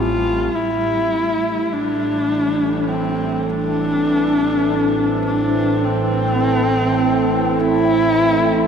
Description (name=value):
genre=dark ambient drone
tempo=51 BPM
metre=4/4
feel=straight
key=A minor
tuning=A4 = 440 Hz
part: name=warm horsehead fiddle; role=melody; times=0.0-8.7 s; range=C4 to F4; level=-18 LUFS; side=equal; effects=tape echo
part: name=sweeping resonant pad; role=sustained chords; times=0.0-8.7 s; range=A2 to A4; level=-20 LUFS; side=right 2 dB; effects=chorus
part: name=gamelan-type bronze metallophone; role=arpeggios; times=0.0-6.4 s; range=G3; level=-37 LUFS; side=left 4 dB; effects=none
part: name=overtone-sweeping drone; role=drone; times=0.0-8.7 s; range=A1 to A2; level=-28 LUFS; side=left 1 dB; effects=chorus, built-in reverb
room=wet cathedral reverb, RT60 6.5 s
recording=none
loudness=-16 LUFS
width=side -7 dB against mid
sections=0.6-8.7 A section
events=fade-in on synth drone 0.6-8.7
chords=0.0 C5; 0.6 Am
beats=| 0.55 1.73 2.91 4.08 | 5.26 6.44 7.61